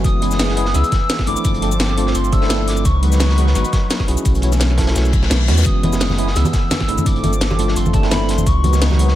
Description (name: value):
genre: liquid drum and bass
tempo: 171 BPM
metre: 4/4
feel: swing 53% on 16ths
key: unclear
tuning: A4 = 439 Hz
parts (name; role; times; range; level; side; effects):
- hollow clarinet-like synth lead; melody; 0.0-9.2 s; A5 to E6; -25 LUFS; left 1 dB; phaser, lush chorus, cassette tape, diffuse ambient delay
- tine electric piano; accompaniment; 0.0-9.1 s; D#3 to C#5; -23 LUFS; equal; medium stereo tremolo, diffuse ambient delay
- warm analog pad; sustained chords; 0.0-9.2 s; E3 to B4; -25 LUFS; equal; chorus, sidechain pumping
- warm sub bass; bass; 0.0-9.2 s; F#1 to E2; -17 LUFS; equal; none
- drum and bass drum kit; drums; 0.0-9.1 s; hi-hat, shaker, snare drum; -23 LUFS; left 1 dB; none
- electronic kick drum; drums; 0.0-8.5 s; none; -18 LUFS; equal; none
- crunchy breakbeat drum kit; drums; 0.1-9.2 s; hi-hat, snare drum; -28 LUFS; equal; high-pass filter on hats, high-pass filter on snare, high-pass filter on room
- reverse cymbal; sound effects; 5.1-5.7 s; none; -27 LUFS; left 7 dB; none
- congas and bongos; percussion; 5.8-9.0 s; none; -23 LUFS; right 2 dB; none
room: light reverb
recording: none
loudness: -14 LUFS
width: side -13 dB against mid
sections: 0.0-9.2 A section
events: reverse cymbal 5.1-5.7; kick drops out 5.3-5.7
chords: 0.0 F#9sus4; 1.3 G9sus4; 2.9 C#9sus4; 4.1 B9sus4; 5.7 F#9sus4; 6.9 G9sus4; 8.5 C#9sus4